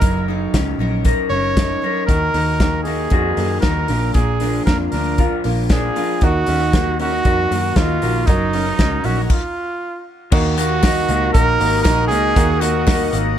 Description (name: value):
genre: jangly indie pop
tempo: 117 BPM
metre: 4/4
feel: straight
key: Eb minor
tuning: A4 = 440 Hz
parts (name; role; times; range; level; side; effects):
- clear trumpet; melody; 0.0-13.1 s; Eb4 to Db5; -21 LUFS; right 3 dB; none
- picked twelve-string acoustic guitar; accompaniment; 0.0-9.3 s; Bb2 to Bb4; -28 LUFS; right 6 dB; none
- electric guitar through a small old amp; arpeggios; 0.0-13.4 s; Bb2 to Bb4; -22 LUFS; left 4 dB; none
- vintage muted fingered electric bass; bass; 0.0-13.3 s; Gb1 to Gb2; -22 LUFS; equal; none
- loose indie drum kit; drums; 0.0-13.2 s; crash cymbal, hi-hat, kick drum, snare drum; -18 LUFS; equal; none
- warm upright piano; accompaniment; 2.1-13.4 s; Bb3 to Bb4; -25 LUFS; right 3 dB; none
- lush unison pad; sustained chords; 11.5-13.4 s; Bb4 to Eb6; -29 LUFS; left 4 dB; chorus
- group handclap; percussion; 10.6-13.0 s; none; -32 LUFS; left 7 dB; none
room: moderate studio ambience, RT60 0.5 s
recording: none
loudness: -15 LUFS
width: side -10 dB against mid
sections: 0.0-10.3 A section; 10.3-13.4 B section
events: stop 9.3-10.3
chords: 0.0 Gb6; 2.1 Ebm; 3.9 Bb; 6.2 Ebm; 8.3 Gb6; 9.3 N.C.; 10.3 Ebm